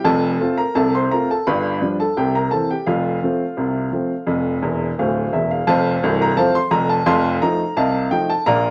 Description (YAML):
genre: ragtime piano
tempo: 86 BPM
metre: 2/4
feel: straight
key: F major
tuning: A4 = 440 Hz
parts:
  - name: warm upright piano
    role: solo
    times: 0.0-8.7 s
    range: C1 to C6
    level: -19 LUFS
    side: equal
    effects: none
room: wet studio reverb, RT60 0.7 s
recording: none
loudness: -19 LUFS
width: mono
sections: 0.0-5.7 A section; 5.7-8.7 A section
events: upright piano fill 4.6-5.7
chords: 0.1 F; 1.5 G7; 2.2 C7; 2.9 F; 7.1 F7